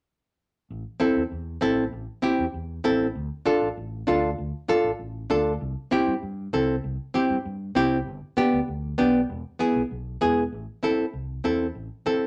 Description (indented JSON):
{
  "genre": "latin, cumbia",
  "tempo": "196 BPM",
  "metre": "4/4",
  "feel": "straight",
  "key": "A minor",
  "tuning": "A4 = 440 Hz",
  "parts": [
    { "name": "fingered electric bass", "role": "bass", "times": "0.7-11.9 s", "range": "E1 to G2", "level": "-36 LUFS", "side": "equal", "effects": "none" },
    { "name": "nylon-string guitar", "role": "accompaniment", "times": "1.0-12.3 s", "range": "B3 to A4", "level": "-24 LUFS", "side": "equal", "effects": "none" }
  ],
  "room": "wet small room reverb, RT60 0.6 s",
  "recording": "none",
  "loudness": "-26 LUFS",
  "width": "mono",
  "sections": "0.7-10.5 A section; 10.5-12.3 B section",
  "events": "none",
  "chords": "0.7 Am; 3.2 Dm; 5.6 C; 8.1 G; 9.3 E; 10.5 Am",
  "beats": "| 0.70 1.01 1.31 1.62 | 1.93 2.24 2.54 2.85 | 3.16 3.46 3.77 4.08 | 4.38 4.69 5.00 5.30 | 5.61 5.92 6.22 6.53 | 6.84 7.14 7.45 7.76 | 8.06 8.37 8.68 8.99 | 9.29 9.60 9.91 10.21 | 10.52 10.83 11.13 11.44 | 11.75 12.06"
}